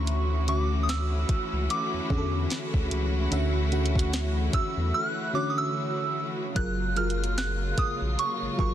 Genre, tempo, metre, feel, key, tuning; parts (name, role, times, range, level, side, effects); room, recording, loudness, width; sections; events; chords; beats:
contemporary R&B; 74 BPM; 4/4; swing 58% on 16ths; A4 = 440 Hz
soft synth bell; melody; 0.0-8.7 s; C#6 to F#6; -30 LUFS; right 2 dB; chorus, ping-pong delay
FM electric piano with soft pad layer; accompaniment; 0.0-8.7 s; D3 to F#5; -32 LUFS; equal; chorus
warm studio string section; sustained chords; 0.0-8.7 s; C#3 to F#4; -33 LUFS; equal
saturated sub bass; bass; 0.0-8.7 s; F#1 to E2; -28 LUFS; equal
smooth R&B drum kit; drums; 0.1-8.7 s; hi-hat, kick drum, snare drum; -29 LUFS; equal; vintage 12-bit sampler grit
little or no reverb; dense, heavily limited modern master; -25 LUFS; side -11 dB against mid
0.0-6.6 A section; 6.6-8.7 B section
break 4.9-6.6
0.0 Dmaj9; 6.6 F#maj9
| 0.07 0.88 1.69 2.50 | 3.32 4.13 4.94 5.75 | 6.56 7.37 8.18